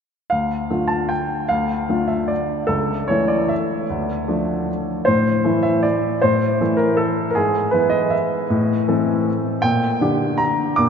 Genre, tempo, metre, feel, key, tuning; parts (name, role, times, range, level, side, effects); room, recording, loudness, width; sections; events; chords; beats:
classical, piano waltz; 155 BPM; 3/4; uneven beats, rubato; D minor; A4 = 444 Hz
clear baby grand piano; solo; 0.3-10.9 s; C#2 to D6; -17 LUFS; equal
wet cathedral reverb, RT60 5.8 s; in a vast, echoing space, nothing above 7.5 kHz; -17 LUFS; side -7 dB against mid
0.3-10.9 A section
0.3 Dm; 2.7 A/C#; 3.9 Dm; 5.1 Am; 7.4 E/G#; 8.5 Am; 9.6 Gm/Bb
| 0.31 0.70 1.10 | 1.50 1.89 2.30 | 2.70 3.10 3.51 | 3.90 4.28 4.68 | 5.07 5.44 5.84 | 6.23 6.60 6.99 | 7.37 7.73 8.12 | 8.50 8.88 9.27 | 9.64 10.01 10.40 | 10.78